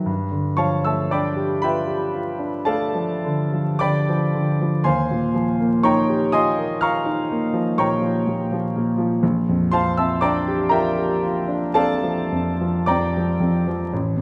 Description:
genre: classical, impressionist solo piano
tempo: 33-42 BPM (dotted quarters)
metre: 9/8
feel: rubato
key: unclear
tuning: A4 = 438 Hz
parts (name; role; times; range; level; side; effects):
- clear grand piano; solo; 0.0-14.2 s; A1 to E#6; -21 LUFS; equal; none
room: moderate recital hall reverb, RT60 1.5 s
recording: dark, warm production, vinyl crackle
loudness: -21 LUFS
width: mono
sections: 0.0-14.2 A section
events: none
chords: 0.1 G9; 4.8 D#9; 9.2 Bb69

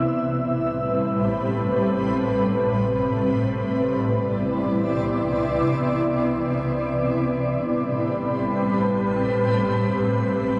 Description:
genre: hip hop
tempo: free time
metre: none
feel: none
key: A minor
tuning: A4 = 443 Hz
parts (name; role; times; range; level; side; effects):
- granular cloud pad; solo; 0.0-10.6 s; A2 to D5; -23 LUFS; equal; built-in reverb
room: light reverb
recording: dry, gritty hardware recording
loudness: -23 LUFS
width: mono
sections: 0.0-7.2 A section; 7.2-10.6 B section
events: none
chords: 0.0 Am9; 3.6 Cmaj9; 7.2 Am9

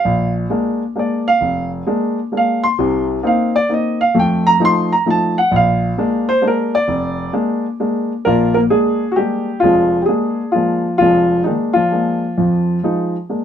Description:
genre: jazz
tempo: 131 BPM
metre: 3/4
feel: swing 65% on 8ths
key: Bb mixolydian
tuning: A4 = 440 Hz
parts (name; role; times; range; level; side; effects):
- dark grand piano; solo; 0.0-13.4 s; F1 to C6; -14 LUFS; equal; none
room: light reverb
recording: minimal, uncompressed stereo recording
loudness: -14 LUFS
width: side -9 dB against mid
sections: 0.0-8.3 A section; 8.3-13.4 B section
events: grand piano solo 0.0-8.3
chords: 0.0 Bb7; 2.8 Cm7; 4.1 F7; 5.5 Bb7; 12.4 Fm7

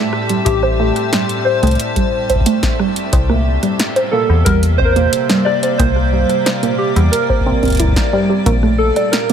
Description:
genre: IDM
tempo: 90 BPM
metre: 4/4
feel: straight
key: unclear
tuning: A4 = 440 Hz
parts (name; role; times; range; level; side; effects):
- warbly lo-fi synth keys; melody; 0.0-9.3 s; G4 to D5; -18 LUFS; equal; chorus, vintage 12-bit sampler grit, analog delay
- icy glass pad; sustained chords; 0.0-9.3 s; A2 to A5; -21 LUFS; left 1 dB; chorus, built-in reverb
- warbly dusty pluck; arpeggios; 0.0-9.3 s; G3 to D5; -18 LUFS; right 3 dB; chorus, cassette tape, tape echo
- electro analog drum machine; drums; 0.1-9.3 s; hi-hat, rim click, snare drum; -21 LUFS; equal; small room ambience, dub echo
- metallic FM bass; bass; 0.5-8.9 s; A1 to E2; -15 LUFS; left 1 dB; none
- electronic kick drum; drums; 0.5-8.6 s; none; -17 LUFS; left 1 dB; small room ambience
room: light reverb, digital ambience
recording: echo-heavy mix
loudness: -12 LUFS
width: side -8 dB against mid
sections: 0.0-9.3 A section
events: none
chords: 0.0 Am7; 3.1 C7; 8.5 Bbmaj7

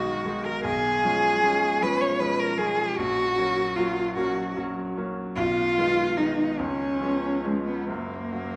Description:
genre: classical, romantic duo for cello and grand piano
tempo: 45-52 BPM (dotted quarters)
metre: 6/8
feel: rubato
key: F# major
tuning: A4 = 440 Hz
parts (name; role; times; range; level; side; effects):
- dark cello; melody; 0.0-8.6 s; G#3 to C#5; -26 LUFS; equal; none
- bright baby grand piano; accompaniment; 0.0-8.6 s; F#1 to D#4; -32 LUFS; equal; none
room: wet scoring stage reverb, RT60 1.6 s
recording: recorded in a church or concert hall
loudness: -25 LUFS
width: mono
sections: 0.0-8.6 A section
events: none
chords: 0.0 G#m7/B; 0.7 C#7/B; 3.0 F#/A#; 5.4 G#m/B; 6.6 C#7; 7.9 F#

